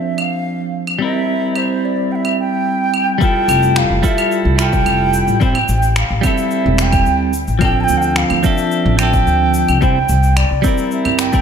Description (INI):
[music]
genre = sunset chillout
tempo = 109 BPM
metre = 4/4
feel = straight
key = F major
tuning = A4 = 440 Hz
[part]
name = breathy mellow wooden flute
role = melody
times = 0.0-11.4 s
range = C5 to A5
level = -19 LUFS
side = right 2 dB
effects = diffuse ambient delay
[part]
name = clean electric guitar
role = accompaniment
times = 0.0-11.4 s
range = F3 to C5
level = -18 LUFS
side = right 1 dB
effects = auto-pan, diffuse ambient delay
[part]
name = electronic claves, shaker and finger snaps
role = drums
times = 0.2-11.4 s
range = none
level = -21 LUFS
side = left 1 dB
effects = overdrive
[part]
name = electronic kick drum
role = drums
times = 3.2-11.4 s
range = none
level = -17 LUFS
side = left 1 dB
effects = overdrive
[part]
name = upright bass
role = bass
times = 3.5-11.4 s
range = E1 to D2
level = -17 LUFS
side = left 1 dB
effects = none
[sound]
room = moderate plate reverb, RT60 1.7 s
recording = dreamy mix soaked in reverb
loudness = -13 LUFS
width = side -7 dB against mid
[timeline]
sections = 0.0-3.2 A section; 3.2-11.4 B section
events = filter sweep on clean electric guitar 0.0-3.2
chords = 0.0 Dm7; 1.0 C7; 3.2 Fmaj9; 5.4 Am7; 7.3 Dm7; 9.8 C7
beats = 0.46 | 1.01 1.56 2.11 2.66 | 3.21 3.77 4.32 4.87 | 5.42 5.97 6.52 7.07 | 7.62 8.17 8.72 9.27 | 9.82 10.37 10.92